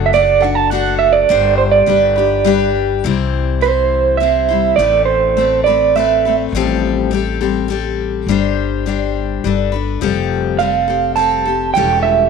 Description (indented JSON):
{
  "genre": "folk",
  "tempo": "103 BPM",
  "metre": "3/4",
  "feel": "straight",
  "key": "C major",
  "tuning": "A4 = 441 Hz",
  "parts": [
    { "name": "picked steel-string acoustic guitar", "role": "accompaniment", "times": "0.0-12.3 s", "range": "A2 to C5", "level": "-18 LUFS", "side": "left 13 dB", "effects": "none" },
    { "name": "upright bass", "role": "bass", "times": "0.0-12.3 s", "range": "E1 to C2", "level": "-21 LUFS", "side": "left 2 dB", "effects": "none" },
    { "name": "electric guitar through a small old amp", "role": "melody", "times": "0.1-6.4, 10.6-12.3 s", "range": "C5 to A5", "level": "-13 LUFS", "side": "right 9 dB", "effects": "tremolo, slapback echo" }
  ],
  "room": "light reverb, small room ambience",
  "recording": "1960s-style stereo with parts hard left and right",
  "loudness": "-12 LUFS",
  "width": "side -6 dB against mid",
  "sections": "0.0-3.0 A section; 3.0-12.3 B section",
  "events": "clean electric guitar solo 0.0-3.0",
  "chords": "0.0 D/F#; 1.3 Gsus4; 1.9 G; 3.0 C; 4.8 Amadd9; 6.5 Fadd9/A; 8.3 Gsus4; 9.4 Gadd9; 10.0 Fadd9; 11.8 A7/E",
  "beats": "0.14 0.72 | 1.30 1.88 2.46 | 3.04 3.62 4.20 | 4.78 5.36 5.94 | 6.52 7.10 7.68 | 8.27 8.85 9.43 | 10.01 10.59 11.18 | 11.76"
}